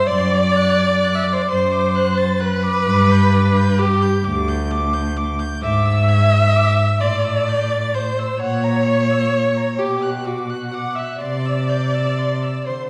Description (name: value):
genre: classical, slow romantic movement for string quartet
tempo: 43 BPM (dotted quarters)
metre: 6/8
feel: rubato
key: G major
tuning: A4 = 439 Hz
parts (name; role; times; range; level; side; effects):
- warm violin; melody; 0.0-12.9 s; F#5 to A6; -28 LUFS; equal; none
- rich violin; second line; 0.0-12.9 s; F#4 to F#5; -27 LUFS; equal; none
- rich viola; accompaniment; 0.0-12.9 s; F#4 to F#5; -23 LUFS; equal; none
- warm cello; bass; 0.1-12.9 s; D2 to D3; -21 LUFS; equal; none
room: wet recital hall reverb, RT60 1.5 s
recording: recorded in a church or concert hall, vinyl crackle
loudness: -18 LUFS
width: mono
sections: 0.0-12.9 A section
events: none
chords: 0.1 D7/F#; 2.9 G; 5.6 E7/G#; 7.0 Am7; 8.4 F#/A# (rootless); 9.8 Bm; 11.2 C